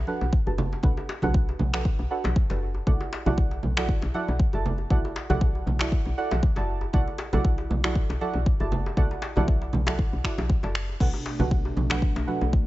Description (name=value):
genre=afro house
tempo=118 BPM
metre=4/4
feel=swing 55% on 16ths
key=unclear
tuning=A4 = 440 Hz
part: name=deep mellow chord stab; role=stabs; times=0.0-12.4 s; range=D4 to A5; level=-31 LUFS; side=right 3 dB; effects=chorus, sidechain pumping, tape echo
part: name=woody FM bass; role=bass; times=0.0-12.6 s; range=F#1 to B1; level=-28 LUFS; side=equal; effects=sidechain pumping
part: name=congas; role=percussion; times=0.1-12.4 s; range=none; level=-31 LUFS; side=right 3 dB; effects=none
part: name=djembe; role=percussion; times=0.2-12.5 s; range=none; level=-34 LUFS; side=left 2 dB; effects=none
part: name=electronic kick drum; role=drums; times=0.3-12.6 s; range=none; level=-24 LUFS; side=equal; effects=small room ambience
part: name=afro-pop drum kit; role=drums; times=1.7-12.0 s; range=crash cymbal, finger snaps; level=-32 LUFS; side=equal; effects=small room ambience
part: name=warm analog pad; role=sustained chords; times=11.0-12.7 s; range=B2 to D4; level=-33 LUFS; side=equal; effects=chorus, sidechain pumping
room=digital ambience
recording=nothing above 7.9 kHz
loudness=-23 LUFS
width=side -17 dB against mid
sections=0.0-12.7 A section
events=none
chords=0.0 Bm7; 2.9 Dadd9; 11.0 Bm7